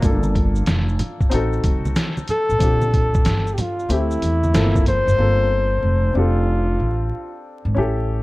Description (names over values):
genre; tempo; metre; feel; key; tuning
hip hop, jazz-hop; 93 BPM; 4/4; swing 65% on 16ths; G dorian; A4 = 441 Hz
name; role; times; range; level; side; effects
warm upright piano; accompaniment; 0.0-8.2 s; F3 to A4; -26 LUFS; left 2 dB; none
upright bass; bass; 0.0-8.2 s; F1 to E2; -20 LUFS; equal; none
trip hop sampler-style drum kit; drums; 0.0-5.1 s; hi-hat, kick drum, snare drum; -20 LUFS; equal; none
maracas and congas; percussion; 0.0-5.2 s; none; -29 LUFS; right 1 dB; none
breathy flugelhorn; melody; 2.3-7.4 s; E4 to C5; -21 LUFS; left 1 dB; none
room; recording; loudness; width
studio reverb; dark, warm production, vinyl crackle; -16 LUFS; side -20 dB against mid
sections
0.0-5.2 A section; 5.2-8.2 B section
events
none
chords
0.0 Gm7; 1.3 Adim7; 2.6 Bb69; 3.9 D9sus4; 4.5 Gm11; 6.2 F6